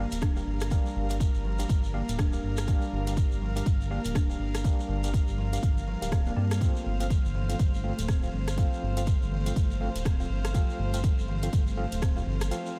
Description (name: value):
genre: afro house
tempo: 122 BPM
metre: 4/4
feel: swing 59% on 16ths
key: G minor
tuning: A4 = 440 Hz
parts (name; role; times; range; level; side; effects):
- warm chamber string section; sustained chords; 0.0-12.8 s; G3 to F5; -42 LUFS; equal; sidechain pumping
- buzzing kalimba; arpeggios; 0.0-12.6 s; E3 to D4; -39 LUFS; equal; sidechain pumping, delay
- overdriven tine electric piano; stabs; 0.0-12.8 s; C4 to A5; -41 LUFS; equal; fast tremolo, sidechain pumping, delay
- dark detuned saw bass; bass; 0.0-12.5 s; D1 to G2; -33 LUFS; equal; sidechain pumping
- house drum kit; drums; 0.1-12.6 s; hi-hat, rim click; -43 LUFS; equal; overdrive
- shekere; percussion; 0.1-12.7 s; none; -48 LUFS; equal; none
- electronic kick drum; drums; 0.2-12.1 s; none; -28 LUFS; equal; overdrive
room: small room ambience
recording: none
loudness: -28 LUFS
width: mono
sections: 0.0-12.8 A section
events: break 12.5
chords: 0.0 Gm7; 6.6 F